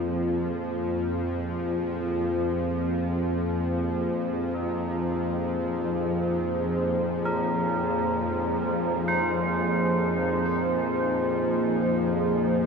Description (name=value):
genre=dark ambient drone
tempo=free time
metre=none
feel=none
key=F minor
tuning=A4 = 436 Hz
part: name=deep dark ambient pad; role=sustained chords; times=0.0-12.7 s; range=F3 to C5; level=-29 LUFS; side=equal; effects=chorus, built-in reverb
part: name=bowed-like drone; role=drone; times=0.0-12.7 s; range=F2 to F3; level=-27 LUFS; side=left 1 dB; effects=built-in reverb
part: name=tubular bells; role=arpeggios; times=4.5-12.7 s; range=Eb4 to C5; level=-31 LUFS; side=right 3 dB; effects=tape echo
room=wet huge ambient reverb, RT60 8.3 s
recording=none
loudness=-24 LUFS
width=side -5 dB against mid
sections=0.0-12.7 A section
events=fade-in on ambient pad 0.0-12.7; fade-in on tubular bells 0.0-12.7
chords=0.0 Fm